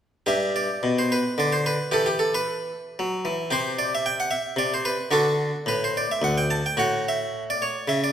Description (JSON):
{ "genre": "classical, baroque-style suite movement for harpsichord", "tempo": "111 BPM", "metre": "3/4", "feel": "rubato", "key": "G major", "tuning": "A4 = 440 Hz", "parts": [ { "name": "harpsichord", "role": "solo", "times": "0.3-8.1 s", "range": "D2 to A5", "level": "-22 LUFS", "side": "equal", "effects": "none" } ], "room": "wet recital hall reverb, RT60 1.6 s", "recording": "none", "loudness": "-22 LUFS", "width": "side -9 dB against mid", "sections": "0.3-8.1 A section", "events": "none", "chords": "0.3 G; 1.9 Em; 3.5 C5; 4.6 N.C.; 5.1 D; 6.8 F#m/A" }